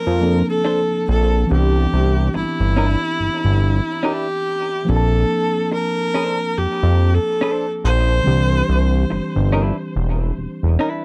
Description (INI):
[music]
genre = R&B, neo-soul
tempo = 71 BPM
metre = 4/4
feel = swing 59% on 16ths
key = C major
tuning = A4 = 439 Hz
[part]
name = rich viola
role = melody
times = 0.0-9.5 s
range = E4 to C5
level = -24 LUFS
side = equal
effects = tape echo
[part]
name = tine electric piano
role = accompaniment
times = 0.0-11.0 s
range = D3 to A5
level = -26 LUFS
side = equal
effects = none
[part]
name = fat analog bass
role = bass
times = 0.1-10.8 s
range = E1 to F2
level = -19 LUFS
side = equal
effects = none
[part]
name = vintage hollow-body jazz guitar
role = second line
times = 0.6-11.0 s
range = D4 to C5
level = -28 LUFS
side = equal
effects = tape echo
[sound]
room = little or no reverb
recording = dry, close 1970s-style studio recording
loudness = -18 LUFS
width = mono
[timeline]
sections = 0.0-11.0 A section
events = none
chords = 0.0 Bbmaj9; 1.5 Cmaj9; 4.9 Bbmaj9; 8.2 Cadd9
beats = 0.64 | 1.49 2.33 3.18 4.02 | 4.87 5.71 6.56 7.40 | 8.25 9.09 9.94 10.78